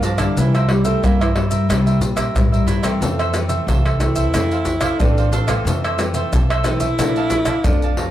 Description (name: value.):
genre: samba and choro.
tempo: 91 BPM.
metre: 4/4.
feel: straight.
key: F major.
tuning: A4 = 441 Hz.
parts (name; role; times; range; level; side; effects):
breathy tenor saxophone; second line; 0.0-8.0 s; D3 to E4; -22 LUFS; right 2 dB; none.
cavaquinho; accompaniment; 0.0-8.1 s; D4 to A5; -25 LUFS; right 3 dB; none.
nylon-string guitar; accompaniment; 0.0-8.1 s; F2 to E4; -24 LUFS; left 4 dB; none.
upright bass; bass; 0.0-8.1 s; A1 to Bb2; -21 LUFS; equal; none.
maracas, surdo, pandeiro and tamborim; percussion; 0.0-8.1 s; none; -19 LUFS; equal; none.
room: light reverb.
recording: none.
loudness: -15 LUFS.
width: side -12 dB against mid.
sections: 0.0-8.1 A section.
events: tenor saxophone solo 0.0-8.1.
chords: 0.4 C7; 3.0 Fmaj7; 4.3 Dm9/F; 5.7 Fmaj7; 7.0 Bbmaj7.